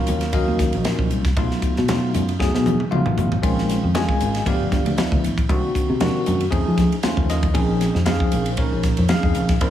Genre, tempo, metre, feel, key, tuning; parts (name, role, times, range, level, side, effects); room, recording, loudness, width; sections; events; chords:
electric jazz fusion; 116 BPM; 4/4; swing 54% on 16ths; Bb minor; A4 = 439 Hz
bell-like tine electric piano; accompaniment; 0.0-9.7 s; Eb3 to Ab5; -22 LUFS; left 1 dB; medium stereo tremolo
fingered electric bass; bass; 0.1-9.7 s; G1 to F3; -22 LUFS; equal
crisp fusion drum kit; drums; 0.1-9.7 s; hi-hat, kick drum, ride cymbal, snare drum, toms; -23 LUFS; equal
congas; percussion; 0.1-9.7 s; -27 LUFS; right 2 dB
light reverb; small room ambience; -18 LUFS; side -11 dB against mid
0.0-9.7 A section
drum fill 2.4-3.4; tine electric piano fill 2.7-3.4
0.0 Ebm9; 1.4 B7#11; 3.4 Bbm11; 4.5 G7; 5.5 Cm7b5; 6.5 F7alt; 7.6 Bbm11